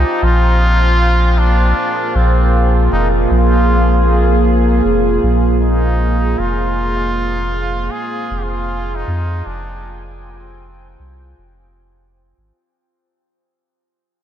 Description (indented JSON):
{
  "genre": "ambient dub",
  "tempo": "78 BPM",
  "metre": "4/4",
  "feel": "swing 59% on 16ths",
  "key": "F dorian",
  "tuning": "A4 = 441 Hz",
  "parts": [
    { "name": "trombone with straight mute", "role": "melody", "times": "0.0-11.0 s", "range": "Bb3 to Ab4", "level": "-20 LUFS", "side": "equal", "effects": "dub echo" },
    { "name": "deep dark ambient pad", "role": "sustained chords", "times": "0.0-12.5 s", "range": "Bb3 to Ab5", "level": "-18 LUFS", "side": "right 1 dB", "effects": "chorus, built-in reverb" },
    { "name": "soft dub sub bass", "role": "bass", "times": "0.0-12.5 s", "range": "F1 to F2", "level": "-15 LUFS", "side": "equal", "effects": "none" }
  ],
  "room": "moderate lush hall reverb, RT60 2.6 s",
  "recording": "dreamy mix soaked in reverb",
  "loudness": "-12 LUFS",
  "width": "side -10 dB against mid",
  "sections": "0.0-12.5 A section",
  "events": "fade-out 4.3-12.5",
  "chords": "0.0 Fm"
}